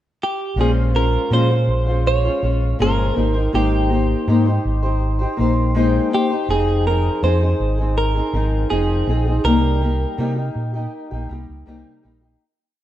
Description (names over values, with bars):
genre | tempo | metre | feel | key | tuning
indie pop, bedroom pop | 81 BPM | 4/4 | straight | unclear | A4 = 440 Hz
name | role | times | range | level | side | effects
direct-recorded clean electric guitar | melody | 0.2-10.9 s | G4 to Db5 | -22 LUFS | right 2 dB | wide subtle chorus, analog delay
fingerpicked acoustic archtop guitar | accompaniment | 0.6-12.4 s | Bb2 to C5 | -21 LUFS | left 2 dB | lush chorus, vibrato effect
fingered electric bass | bass | 0.6-12.3 s | F1 to C3 | -19 LUFS | equal | none
room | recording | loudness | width
light reverb, studio ambience | rough home demo mix | -16 LUFS | side -12 dB against mid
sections
0.0-0.6 pickup bar; 0.6-12.4 verse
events
fade-out 9.5-12.4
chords
0.0 N.C.; 0.6 Bbm9; 3.2 Abmaj9; 6.5 Fm7; 9.5 Cm7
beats
| 0.57 1.31 2.05 2.79 | 3.53 4.27 5.01 5.75 | 6.49 7.23 7.97 8.71 | 9.45 10.19 10.93 11.67